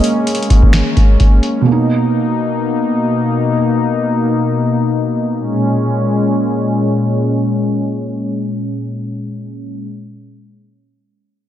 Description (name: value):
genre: hip hop, trap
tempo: free time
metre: none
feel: none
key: Bb phrygian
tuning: A4 = 440 Hz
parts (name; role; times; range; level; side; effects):
- felt-muted upright piano; accompaniment; 0.0-3.5 s; B2 to Eb5; -18 LUFS; right 4 dB; none
- warm analog pad; sustained chords; 0.0-9.9 s; Bb2 to D#4; -15 LUFS; left 2 dB; chorus
- booming analog drum machine; drums; 0.0-1.5 s; finger snaps, hi-hat, kick drum, snare drum; -10 LUFS; equal; none
room: light reverb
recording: low-pass filter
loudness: -13 LUFS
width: side -11 dB against mid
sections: 0.0-5.4 A section; 5.4-9.1 B section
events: filter sweep 0.0-5.4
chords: 0.0 Bbm7; 1.7 Bmaj7; 5.4 Bbm7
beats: free time